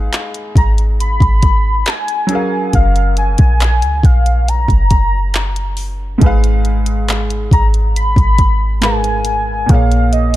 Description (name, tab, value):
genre	contemporary R&B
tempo	69 BPM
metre	4/4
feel	straight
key	G# dorian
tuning	A4 = 445 Hz
part	clear concert grand piano	accompaniment	0.0-10.4 s	G#2 to E#5	-20 LUFS	right 1 dB	none
part	clean 808-style bass	bass	0.0-10.4 s	F#1 to C#2	-14 LUFS	equal	none
part	smooth R&B drum kit	drums	0.1-10.4 s	handclaps, hi-hat, kick drum	-14 LUFS	equal	none
part	warm velvety synth lead	melody	0.6-10.4 s	D#5 to B5	-18 LUFS	equal	chorus
room	digital ambience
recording	dark, warm production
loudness	-11 LUFS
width	side -15 dB against mid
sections	0.0-10.4 A section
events	none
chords	0.0 G#m6; 2.3 F#maj9; 6.2 G#m69; 9.7 A#m7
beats	0.13 1.00 1.87 | 2.74 3.61 4.48 5.34 | 6.21 7.08 7.95 8.82 | 9.69